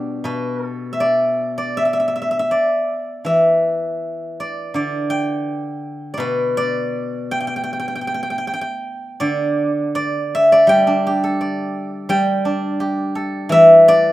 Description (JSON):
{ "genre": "chinese traditional, Chinese solo plucked strings", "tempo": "77-85 BPM", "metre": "2/4", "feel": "rubato", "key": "G gong mode", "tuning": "A4 = 438 Hz", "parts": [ { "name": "steel-string zither", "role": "solo", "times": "0.0-14.1 s", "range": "B2 to G5", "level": "-16 LUFS", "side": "equal", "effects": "none" } ], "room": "small room ambience", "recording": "rough home demo mix", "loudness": "-15 LUFS", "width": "side -16 dB against mid", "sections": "0.0-9.2 A section; 9.2-14.1 B section", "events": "none", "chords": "none", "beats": "| 0.26 1.00 | 1.74 2.50 | 3.27 4.03 | 4.76 5.48 | 6.20 6.94 | 7.69 8.45 | 9.21 9.95 | 10.67 11.39 | 12.09 12.80 | 13.52" }